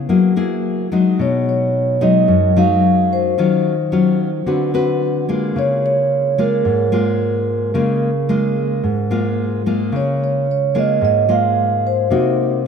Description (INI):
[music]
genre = bossa nova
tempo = 110 BPM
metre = 4/4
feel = straight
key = Db major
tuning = A4 = 441 Hz
[part]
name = nylon-string guitar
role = accompaniment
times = 0.0-12.7 s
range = Gb2 to B4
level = -16 LUFS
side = left 2 dB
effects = none
[part]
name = vibraphone with soft mallets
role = melody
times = 1.2-12.7 s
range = Bb4 to F5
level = -18 LUFS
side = moving between left 8 dB and right 8 dB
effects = auto-pan, tape echo
[sound]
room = moderate plate reverb, RT60 3.2 s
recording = dreamy mix soaked in reverb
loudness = -14 LUFS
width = side -6 dB against mid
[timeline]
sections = 0.0-9.9 A section; 9.9-12.7 A section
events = none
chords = 0.1 Gb9; 1.2 Cb6; 3.4 Ebm9; 4.5 D6; 5.6 Db6; 12.1 Cm7b5